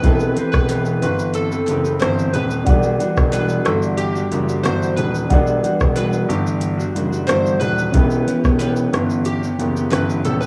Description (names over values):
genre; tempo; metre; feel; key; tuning
indie pop, bedroom pop; 91 BPM; 4/4; straight; E minor; A4 = 442 Hz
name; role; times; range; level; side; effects
warm analog keys; melody; 0.0-10.5 s; G4 to C5; -27 LUFS; equal; lush chorus
reed electric piano; accompaniment; 0.0-10.5 s; C4 to F#5; -27 LUFS; equal; fast tremolo, cassette tape
semi-hollow electric guitar; accompaniment; 0.0-10.5 s; E3 to B4; -24 LUFS; equal; subtle chorus, vibrato effect
warm concert grand piano; bass; 0.0-10.5 s; D#1 to G1; -24 LUFS; equal; none
soft vintage rhythm box; drums; 0.0-10.5 s; hi-hat, kick drum, rim click, shaker; -22 LUFS; equal; overdrive, cassette tape
group handclap; percussion; 0.7-10.1 s; none; -39 LUFS; equal; none
room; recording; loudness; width
little or no reverb; home recording on cassette, small room ambience; -18 LUFS; mono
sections
0.0-10.5 A section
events
none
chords
0.0 Am9; 2.7 Em9; 7.9 D#7b9b13 (rootless)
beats
| 0.04 0.70 1.36 2.02 | 2.67 3.33 3.99 4.65 | 5.31 5.97 6.63 7.29 | 7.94 8.60 9.26 9.92